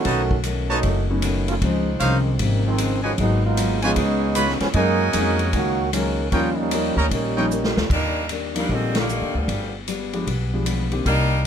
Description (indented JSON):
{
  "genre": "jazz, big band swing",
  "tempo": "153 BPM",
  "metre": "4/4",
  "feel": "swing 65% on 8ths",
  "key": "Eb major from 7.9 s",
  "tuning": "A4 = 440 Hz",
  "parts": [
    { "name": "clear trombone section", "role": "second line", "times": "0.0-7.8 s", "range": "C3 to Gb4", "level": "-24 LUFS", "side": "right 3 dB", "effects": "none" },
    { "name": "warm concert grand piano", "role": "accompaniment", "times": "0.0-11.0 s", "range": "Eb3 to G4", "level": "-26 LUFS", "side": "left 1 dB", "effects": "none" },
    { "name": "swinging big-band drum kit", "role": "drums", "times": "0.0-11.2 s", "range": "crash cymbal, hi-hat, kick drum, ride cymbal, snare drum", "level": "-27 LUFS", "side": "equal", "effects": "none" },
    { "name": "picked steel-string acoustic guitar", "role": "accompaniment", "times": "0.1-11.3 s", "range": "Ab2 to Ab4", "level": "-30 LUFS", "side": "left 6 dB", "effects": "none" },
    { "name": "bright trumpet section", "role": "stabs", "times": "0.1-7.5 s", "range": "D#4 to Cb6", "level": "-24 LUFS", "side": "right 2 dB", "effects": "none" },
    { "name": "upright bass", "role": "bass", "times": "0.1-11.5 s", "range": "F#1 to Gb2", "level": "-24 LUFS", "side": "equal", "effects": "none" },
    { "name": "edgy saxophone section", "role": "melody", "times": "7.9-11.4 s", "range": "Cb3 to Eb4", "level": "-24 LUFS", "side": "equal", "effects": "none" }
  ],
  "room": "light reverb",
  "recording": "none",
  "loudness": "-19 LUFS",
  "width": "side -8 dB against mid",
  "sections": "0.0-7.9 A section; 7.9-11.5 B section",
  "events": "trombone section solo 0.0-7.9; drum fill 7.5-7.9; band accent 8.9",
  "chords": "0.1 B9; 1.6 Dbmaj9; 3.2 Abm7; 4.0 Db7; 4.7 Gb69; 6.3 Eb7; 7.9 Ebmaj7; 9.5 G7b9"
}